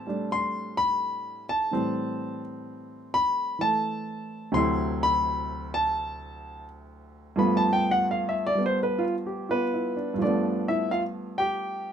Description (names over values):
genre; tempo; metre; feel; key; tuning
solo jazz; 85 BPM; 4/4; swing 67% on 8ths; G mixolydian; A4 = 437 Hz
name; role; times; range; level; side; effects
warm grand piano; solo; 0.0-11.9 s; D2 to C6; -25 LUFS; equal; none
room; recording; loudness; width
light reverb; minimal, uncompressed stereo recording; -24 LUFS; side -8 dB against mid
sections
0.0-10.2 A section; 10.2-11.9 B section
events
grand piano solo 0.0-10.2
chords
0.0 Am7; 4.5 D9; 7.4 G9